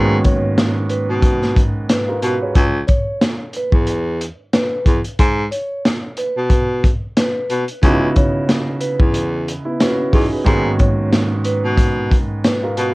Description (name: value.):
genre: hip hop, boom-bap hip-hop.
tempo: 91 BPM.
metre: 4/4.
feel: swing 56% on 16ths.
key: C# minor.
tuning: A4 = 442 Hz.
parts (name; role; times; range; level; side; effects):
dark grand piano; accompaniment; 0.0-2.6, 7.8-12.9 s; G#2 to C#5; -19 LUFS; right 1 dB; cassette tape.
mellow baritone saxophone; bass; 0.0-12.9 s; C#2 to B2; -19 LUFS; equal; none.
vibraphone with soft mallets; melody; 0.2-12.7 s; B4 to C#5; -24 LUFS; equal; auto-pan, tape echo.
crunchy breakbeat drum kit; drums; 0.2-12.9 s; hi-hat, kick drum, snare drum; -16 LUFS; equal; none.
room: light reverb.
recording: worn, warbling old tape, cassette tape, warbly pitch drift.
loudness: -15 LUFS.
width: side -22 dB against mid.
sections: 0.0-12.9 A section.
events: none.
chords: 0.0 G#m11; 2.6 C#m; 5.2 G#m; 7.8 C#m11; 10.5 G#m11.